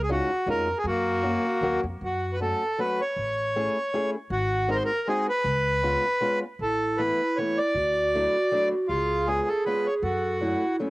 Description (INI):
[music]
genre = musette waltz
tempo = 157 BPM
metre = 3/4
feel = swing 55% on 8ths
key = F# minor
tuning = A4 = 440 Hz
[part]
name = accordion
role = melody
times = 0.0-10.8 s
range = A#3 to D5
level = -25 LUFS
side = equal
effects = cassette tape
[part]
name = upright bass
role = bass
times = 0.0-10.5 s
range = G#1 to F#2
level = -32 LUFS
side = equal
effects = none
[part]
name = fingerpicked old ladder-braced acoustic guitar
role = accompaniment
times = 0.1-10.9 s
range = E3 to G#4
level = -30 LUFS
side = left 2 dB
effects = cassette tape
[part]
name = mellow clarinet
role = second line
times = 6.6-10.9 s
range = C#4 to A4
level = -27 LUFS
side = right 2 dB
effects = cassette tape, analog delay
[sound]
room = moderate studio ambience, RT60 0.5 s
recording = home recording on cassette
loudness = -23 LUFS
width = side -20 dB against mid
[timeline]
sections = 0.0-2.0 A section; 2.0-10.9 B section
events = none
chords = 0.0 C#add9; 0.8 F#; 2.0 F#m; 3.2 Amaj7; 4.3 G#7; 5.4 C#7; 6.6 Asus2; 7.8 Dadd9; 8.9 C#7; 10.0 F#m7